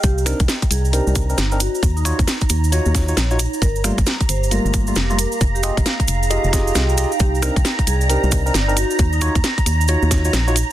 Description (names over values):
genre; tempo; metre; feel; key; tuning
UK garage, two-step garage; 134 BPM; 4/4; swing 62% on 16ths; C minor; A4 = 440 Hz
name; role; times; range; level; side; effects
vibraphone with medium mallets; melody; 0.0-9.3 s; Eb4 to C5; -29 LUFS; equal; tape echo
soft string machine; sustained chords; 0.0-10.7 s; Bb5; -28 LUFS; right 2 dB; ensemble chorus, sidechain pumping
organ-like FM bass; bass; 0.0-10.6 s; F1 to Eb2; -19 LUFS; equal; sidechain pumping
electronic kick drum; drums; 0.0-10.2 s; none; -18 LUFS; equal; none
garage drum kit; drums; 0.0-10.7 s; finger snaps, hi-hat, snare drum; -22 LUFS; equal; none
cabasa; percussion; 0.0-10.7 s; none; -27 LUFS; right 5 dB; none
warbly tape-like pad; texture; 0.0-10.7 s; Bb3 to Bb5; -28 LUFS; right 4 dB; chorus, built-in reverb, phaser, sidechain pumping
bright tine electric piano; stabs; 0.3-10.6 s; G3 to Eb5; -24 LUFS; equal; phaser, ping-pong delay
room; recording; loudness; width
light reverb; dense, heavily limited modern master; -15 LUFS; side -13 dB against mid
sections
0.0-10.7 A section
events
none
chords
0.0 Cm9; 1.8 Ebm9; 3.6 Gm9; 5.2 Fm9; 7.2 Cm9; 9.0 Ebm9